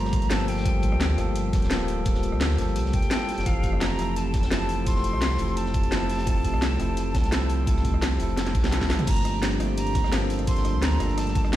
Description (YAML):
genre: liquid drum and bass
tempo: 171 BPM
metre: 4/4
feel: straight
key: G dorian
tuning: A4 = 442 Hz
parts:
  - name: breathy bright jazz flute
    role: melody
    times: 0.0-11.6 s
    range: F5 to C6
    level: -33 LUFS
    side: right 1 dB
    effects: digital delay
  - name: bell-like tine electric piano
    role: accompaniment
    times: 0.0-11.6 s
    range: E3 to A4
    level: -30 LUFS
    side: left 1 dB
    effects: auto-pan, ping-pong delay
  - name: airy breathy pad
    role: sustained chords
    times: 0.0-11.6 s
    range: F3 to G4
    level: -32 LUFS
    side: right 1 dB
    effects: chorus, sidechain pumping
  - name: sub bass with octave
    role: bass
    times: 0.0-11.6 s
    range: D1 to D2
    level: -26 LUFS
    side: equal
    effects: none
  - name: crunchy breakbeat drum kit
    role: drums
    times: 0.0-11.6 s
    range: hi-hat, snare drum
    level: -37 LUFS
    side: equal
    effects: high-pass filter on hats, high-pass filter on snare, high-pass filter on room
  - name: drum and bass drum kit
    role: drums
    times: 0.1-11.6 s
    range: crash cymbal, hi-hat, ride cymbal, rim click, snare drum, toms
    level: -30 LUFS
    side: equal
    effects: none
  - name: electronic kick drum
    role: drums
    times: 0.1-11.4 s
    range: none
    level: -24 LUFS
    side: equal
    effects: none
room: digital ambience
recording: played on a big sound system in a bare room, stone room reverb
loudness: -22 LUFS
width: side -13 dB against mid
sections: 0.0-9.1 A section; 9.1-11.6 A section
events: drop 0.0-9.1, 9.1-11.6; drum fill 8.4-9.1; band accent 8.9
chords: 0.0 Gm11; 3.3 Fmaj7; 9.1 Gm11